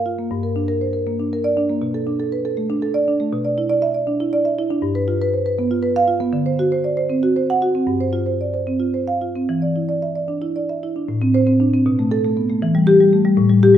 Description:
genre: classical, contemporary piece for solo marimba.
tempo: 79 BPM (dotted quarters).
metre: 6/8.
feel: rubato.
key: A minor from 4.8 s.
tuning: A4 = 440 Hz.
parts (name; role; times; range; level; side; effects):
marimba with soft mallets; solo; 0.0-13.8 s; G2 to F#5; -16 LUFS; equal; none.
room: moderate recital hall reverb, RT60 1.3 s.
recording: none.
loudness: -17 LUFS.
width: side -10 dB against mid.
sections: 0.0-11.1 A section; 11.1-13.8 B section.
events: none.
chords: 0.3 Bb/G; 1.8 Bm7; 3.3 Dsus2/B; 4.8 G7; 6.3 D7; 7.9 G7sus4; 9.5 Dsus2/E; 11.1 Am; 11.9 Asus2/B; 12.6 Em.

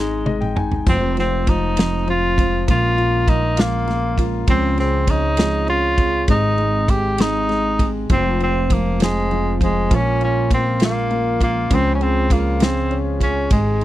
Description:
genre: six-eight pop ballad.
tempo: 66 BPM (dotted quarters).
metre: 6/8.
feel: straight.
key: unclear.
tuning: A4 = 441 Hz.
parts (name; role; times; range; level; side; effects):
warm tenor saxophone; melody; 0.0-13.8 s; Ab3 to G4; -21 LUFS; equal; none.
clear concert grand piano; accompaniment; 0.0-13.8 s; Db3 to Ab5; -24 LUFS; left 5 dB; none.
upright bass; bass; 0.0-13.8 s; F1 to Db2; -22 LUFS; equal; none.
loose indie drum kit; drums; 0.3-13.8 s; kick drum, ride cymbal, snare drum, splash cymbal, toms; -18 LUFS; equal; none.
fingerpicked steel-string acoustic guitar; arpeggios; 0.9-13.8 s; F2 to G4; -26 LUFS; right 12 dB; none.
room: little or no reverb.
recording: dry, close 1970s-style studio recording.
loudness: -16 LUFS.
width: side -14 dB against mid.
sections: 0.0-13.8 A section.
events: drum fill 0.0-0.9; grand piano fill 0.0-0.9.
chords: 0.0 Ab5; 0.9 Fm; 2.7 Bbm7; 4.5 Dbmaj7; 6.3 Abmaj7; 8.1 Fm; 9.9 Bbm7; 11.7 Dbmaj7.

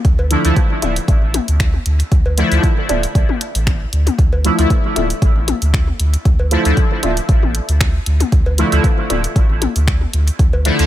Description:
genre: dub techno.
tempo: 116 BPM.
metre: 4/4.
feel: swing 54% on 16ths.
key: D minor.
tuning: A4 = 439 Hz.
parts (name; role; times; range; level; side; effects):
soft dub sub bass; bass; 0.0-10.9 s; D1 to D2; -16 LUFS; equal; sidechain pumping.
electronic kick drum; drums; 0.0-10.5 s; none; -14 LUFS; equal; overdrive, studio ambience.
punchy analog drum machine; drums; 0.0-10.9 s; finger snaps, hi-hat; -24 LUFS; equal; studio ambience.
electronic cowbell and toms; percussion; 0.2-10.6 s; none; -26 LUFS; left 7 dB; overdrive, sidechain pumping on perc, studio ambience, sidechain pumping on toms, dub echo.
resonant sweep polysynth; stabs; 0.3-10.9 s; D3 to E4; -20 LUFS; equal; chorus, phaser, sidechain pumping, dub echo.
filtered dub chord stab; riff; 0.8-9.3 s; F4 to E5; -26 LUFS; right 2 dB; phaser, wide subtle chorus, vintage 12-bit sampler grit, sidechain pumping, dub echo.
room: little or no reverb.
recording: none.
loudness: -13 LUFS.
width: side -13 dB against mid.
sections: 0.0-10.9 A section.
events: none.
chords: 0.0 Dmadd9.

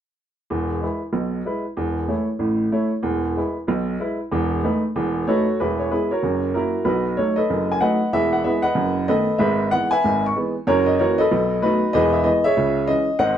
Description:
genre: jazz, stride piano.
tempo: 189 BPM.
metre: 4/4.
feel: swing 63% on 8ths.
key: E major.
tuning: A4 = 440 Hz.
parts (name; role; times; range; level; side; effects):
clear baby grand piano; solo; 0.5-13.4 s; E1 to C#6; -18 LUFS; equal; none.
room: moderate studio reverb, RT60 0.6 s.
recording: none.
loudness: -18 LUFS.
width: side -10 dB against mid.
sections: 0.5-5.6 A section; 5.6-13.4 B section.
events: none.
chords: 0.5 E; 1.8 A/E; 3.0 E; 4.3 B7/E; 5.6 E; 6.2 F#7; 6.9 B7; 8.1 E; 8.8 B7/F#; 9.4 E/G#; 10.7 F#7; 11.3 B7; 11.9 E; 12.6 C#m.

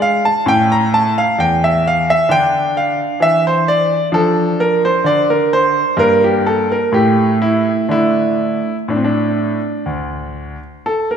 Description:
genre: classical, baroque-style suite movement for grand piano.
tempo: 60-66 BPM.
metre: 4/4.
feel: rubato.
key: D minor.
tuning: A4 = 440 Hz.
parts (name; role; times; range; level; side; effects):
bright baby grand piano; solo; 0.0-11.2 s; D2 to Bb5; -13 LUFS; equal; none.
room: wet concert hall reverb, RT60 1.9 s.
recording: minimal, uncompressed stereo recording.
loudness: -12 LUFS.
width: side -8 dB against mid.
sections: 0.0-11.2 A section.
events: none.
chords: 0.4 A; 2.3 Dmadd9; 4.1 Dm/F; 6.0 Gmadd9; 6.9 N.C.; 7.9 D5.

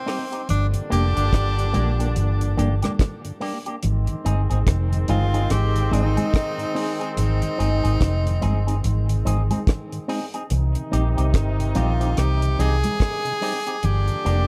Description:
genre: roots reggae.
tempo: 72 BPM.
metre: 4/4.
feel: swing 60% on 16ths.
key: unclear.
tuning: A4 = 441 Hz.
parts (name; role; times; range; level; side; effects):
edgy tenor saxophone; melody; 0.0-14.5 s; C4 to Ab4; -30 LUFS; equal; tape echo.
warm horn section; second line; 0.0-14.5 s; Bb2 to Eb4; -33 LUFS; equal; tape echo.
electric guitar with an envelope filter; accompaniment; 0.1-14.4 s; Bb3 to Ab4; -34 LUFS; equal; tape echo.
mellow tonewheel organ; accompaniment; 0.1-14.4 s; G2 to Eb4; -34 LUFS; equal; slow rotary speaker.
deep reggae drum kit; drums; 0.1-14.5 s; hi-hat, kick drum, rim click; -27 LUFS; equal; none.
vintage muted fingered electric bass; bass; 0.5-14.5 s; F1 to C2; -23 LUFS; equal; none.
congas; percussion; 0.5-14.1 s; none; -34 LUFS; equal; none.
room: studio ambience.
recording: dark, warm production.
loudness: -22 LUFS.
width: mono.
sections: 0.0-14.5 A section.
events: none.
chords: 0.5 Gm; 3.8 Ab; 10.5 Cm; 13.8 Gm.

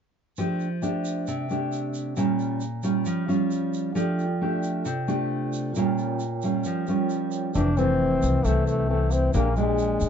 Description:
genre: bossa nova.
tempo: 134 BPM.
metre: 4/4.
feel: straight.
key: F major.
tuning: A4 = 439 Hz.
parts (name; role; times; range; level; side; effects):
nylon-string guitar; accompaniment; 0.4-10.1 s; F2 to G4; -25 LUFS; equal; none.
egg shaker; percussion; 0.4-10.1 s; none; -44 LUFS; right 6 dB; none.
vibraphone with soft mallets; accompaniment; 3.9-7.6 s; F4 to G5; -32 LUFS; right 4 dB; none.
clear French horn; melody; 7.5-10.1 s; Ab3 to D4; -24 LUFS; left 1 dB; none.
upright bass; bass; 7.6-10.1 s; F1 to F2; -24 LUFS; left 1 dB; none.
room: light reverb.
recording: dark, warm production, nothing above 7.5 kHz.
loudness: -23 LUFS.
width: side -8 dB against mid.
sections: 0.4-7.5 A section; 7.5-10.1 B section.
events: none.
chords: 0.4 F69; 2.2 Bbm6; 4.0 F69; 5.8 Bbm6; 7.5 Fmaj7; 9.3 Bb6.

